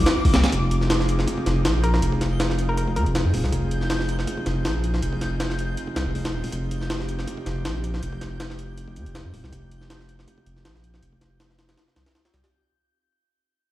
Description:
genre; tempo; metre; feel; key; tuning
drum and bass, jungle; 160 BPM; 4/4; swing 54% on 16ths; F minor; A4 = 440 Hz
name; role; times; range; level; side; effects
airy breathy pad; sustained chords; 0.0-12.5 s; C4 to Ab4; -31 LUFS; right 1 dB; chorus, vintage 12-bit sampler grit
saturated sub bass; bass; 0.0-12.4 s; Eb1 to F2; -24 LUFS; equal; none
backwards swelling texture; texture; 0.0-12.5 s; D6 to G6; -36 LUFS; left 2 dB; built-in reverb
jungle sampler-style drum kit; drums; 0.1-12.5 s; hi-hat, kick drum, snare drum; -25 LUFS; equal; overdrive, high-pass filter on hats, studio reverb, high-pass filter on kick, high-pass filter on snare
hollow square pluck; melody; 1.8-3.5 s; Bb4; -32 LUFS; left 1 dB; chorus, vintage 12-bit sampler grit, dub echo
room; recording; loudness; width
light reverb; played on a big sound system in a bare room, large studio reverb, vinyl crackle; -21 LUFS; side -14 dB against mid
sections
0.5-12.5 A section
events
fade-out 0.5-12.5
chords
0.0 F7(no3); 0.5 Fm7

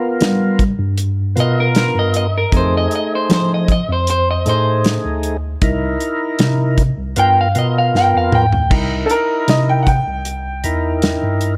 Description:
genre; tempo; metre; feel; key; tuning
straight-eighth soul blues; 78 BPM; 4/4; straight; unclear; A4 = 441 Hz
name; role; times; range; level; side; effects
percussive tonewheel organ; accompaniment; 0.0-11.6 s; A3 to A#4; -23 LUFS; equal; slow rotary speaker, overdrive
mellow tine electric piano; bass; 0.2-11.6 s; C2 to G3; -20 LUFS; equal; none
warm soul drum kit; drums; 0.2-11.6 s; crash cymbal, hi-hat, kick drum, snare drum, toms; -20 LUFS; equal; none
electric guitar through a small old amp; melody; 1.4-8.7 s; A#4 to G5; -19 LUFS; equal; spring reverb
bright upright piano; second line; 9.1-11.4 s; A4 to G5; -22 LUFS; equal; none
room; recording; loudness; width
little or no reverb; none; -16 LUFS; mono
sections
0.0-8.7 A section; 8.7-11.6 B section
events
drum fill 7.9-8.7; upright piano solo 8.7-11.6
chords
0.0 G7#9; 2.5 F7#9; 5.6 C7#9; 7.2 G7#9; 8.7 C7#9

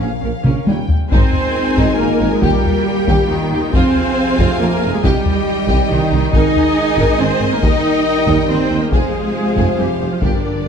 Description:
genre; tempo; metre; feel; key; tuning
cinematic, epic orchestral film score; 138 BPM; 3/4; straight; unclear; A4 = 441 Hz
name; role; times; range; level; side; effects
rich symphonic violin section; melody; 0.0-10.7 s; D5 to Ab5; -27 LUFS; left 4 dB; none
rich symphonic violin section; second line; 0.0-10.6 s; Eb4 to F5; -23 LUFS; left 3 dB; none
rich symphonic viola section; accompaniment; 0.0-10.7 s; Db4 to Eb5; -23 LUFS; equal; none
mellow tuba; bass; 0.0-10.3 s; F1 to Eb2; -24 LUFS; right 5 dB; none
rich symphonic cello section; bass; 0.0-10.7 s; Eb2 to Eb4; -19 LUFS; right 3 dB; none
rich symphonic double bass section; bass; 0.0-10.3 s; Ab1 to G2; -22 LUFS; right 3 dB; none
timpani; percussion; 0.0-0.4, 10.2-10.7 s; G2 to Bb2; -26 LUFS; left 1 dB; none
taiko ensemble; drums; 0.4-10.6 s; none; -18 LUFS; left 1 dB; none
dark French horn section; sustained chords; 0.7-10.7 s; Bb3 to C5; -24 LUFS; left 4 dB; none
dark trombone section; sustained chords; 0.7-10.7 s; Bb2 to Ab3; -25 LUFS; right 1 dB; none
room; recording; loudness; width
moderate scoring stage reverb, RT60 1.9 s; dark, warm production; -13 LUFS; side -7 dB against mid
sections
0.0-1.1 A section; 1.1-10.7 B section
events
drum fill 0.4-1.1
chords
0.0 Bbm; 0.7 Eb7; 1.1 Absus2; 2.4 Eb; 3.7 Fm; 5.0 Cm; 6.3 Absus2; 7.6 Eb; 8.9 Fm

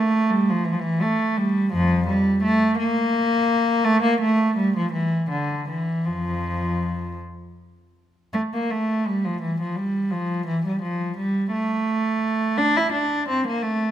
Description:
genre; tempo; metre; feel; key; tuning
classical, baroque-style suite movement for unaccompanied cello; 51-58 BPM (dotted quarters); 6/8; rubato; F major; A4 = 440 Hz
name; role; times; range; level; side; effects
rich cello; solo; 0.0-13.9 s; F2 to E4; -20 LUFS; equal; none
room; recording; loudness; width
wet recital hall reverb, RT60 1.8 s; close, detailed microphones; -20 LUFS; side -11 dB against mid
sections
0.0-8.3 A section; 8.3-13.9 A section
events
none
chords
none

